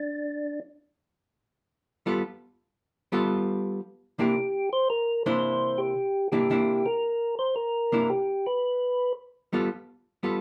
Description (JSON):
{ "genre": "jazz", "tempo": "112 BPM", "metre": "4/4", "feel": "swing 68% on 8ths", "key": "unclear", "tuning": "A4 = 440 Hz", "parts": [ { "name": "percussive tonewheel organ", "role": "melody", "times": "0.0-0.6, 4.2-9.1 s", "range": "D4 to C5", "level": "-28 LUFS", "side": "equal", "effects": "slow rotary speaker" }, { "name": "archtop guitar, miked and amplified", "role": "accompaniment", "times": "2.1-10.4 s", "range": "C3 to A4", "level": "-29 LUFS", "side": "equal", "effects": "none" } ], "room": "wet studio reverb, RT60 0.5 s", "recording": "band playing live in one room", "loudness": "-27 LUFS", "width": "mono", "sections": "0.0-10.4 A section", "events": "none", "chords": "0.0 G9; 4.4 C9; 8.6 G9" }